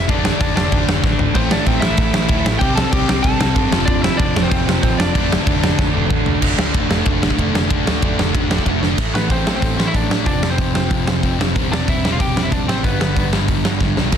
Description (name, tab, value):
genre	punk rock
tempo	188 BPM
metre	4/4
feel	straight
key	unclear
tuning	A4 = 440 Hz
part	lightly driven lead guitar	melody	0.0-6.1, 9.2-13.3 s	B3 to A5	-23 LUFS	left 1 dB	none
part	overdriven picked electric bass	bass	0.0-14.2 s	E1 to G2	-22 LUFS	equal	none
part	overdriven electric guitar	riff	0.1-9.0 s	F2 to D4	-23 LUFS	right 1 dB	none
part	sludgy distorted guitar	riff	0.1-14.2 s	F2 to D4	-23 LUFS	left 12 dB	overdrive
part	big rock drum kit	drums	0.1-14.2 s	crash cymbal, hi-hat, kick drum, ride cymbal, snare drum, toms	-18 LUFS	right 1 dB	none
part	sludgy distorted guitar	riff	1.3-14.2 s	F2 to D4	-24 LUFS	right 14 dB	overdrive
room	light reverb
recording	dense, heavily limited modern master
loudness	-14 LUFS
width	side -8 dB against mid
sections	0.0-6.4 A section; 6.4-9.0 B section; 9.0-14.2 C section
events	drum fill 1.0-1.4, 5.8-6.4, 8.8, 13.8-14.1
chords	0.1 Dm/F; 1.4 Am; 2.6 C5; 3.7 F5; 5.1 Dm/F; 9.0 Am; 10.3 F5; 11.6 C/E; 12.8 G